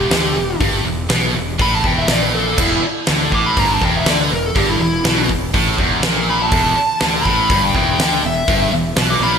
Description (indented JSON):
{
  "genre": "hard rock",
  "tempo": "122 BPM",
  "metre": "4/4",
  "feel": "straight",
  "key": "E minor",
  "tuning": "A4 = 440 Hz",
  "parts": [
    { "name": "smooth overdriven lead guitar", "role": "melody", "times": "0.0-9.3 s", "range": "E4 to D6", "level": "-19 LUFS", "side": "equal", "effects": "digital delay" },
    { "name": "heavy high-gain guitar", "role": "riff", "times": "0.0-9.4 s", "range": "E2 to D3", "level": "-19 LUFS", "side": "right 1 dB", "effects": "distortion" },
    { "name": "fuzz fingered electric bass", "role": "bass", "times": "0.0-9.4 s", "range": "E1 to D2", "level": "-23 LUFS", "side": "equal", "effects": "overdrive" },
    { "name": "huge arena drum kit", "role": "drums", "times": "0.1-9.1 s", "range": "crash cymbal, hi-hat, kick drum, snare drum", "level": "-19 LUFS", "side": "equal", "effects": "none" },
    { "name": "distorted electric guitar", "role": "riff", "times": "2.6-9.4 s", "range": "E2 to D3", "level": "-22 LUFS", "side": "right 1 dB", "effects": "overdrive" }
  ],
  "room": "moderate lush hall reverb, RT60 2.0 s",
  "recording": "bright 1980s-style digital production",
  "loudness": "-13 LUFS",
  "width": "side -7 dB against mid",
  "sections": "0.0-9.4 A section",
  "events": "lead electric guitar solo 0.0-9.4",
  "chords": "0.0 Em"
}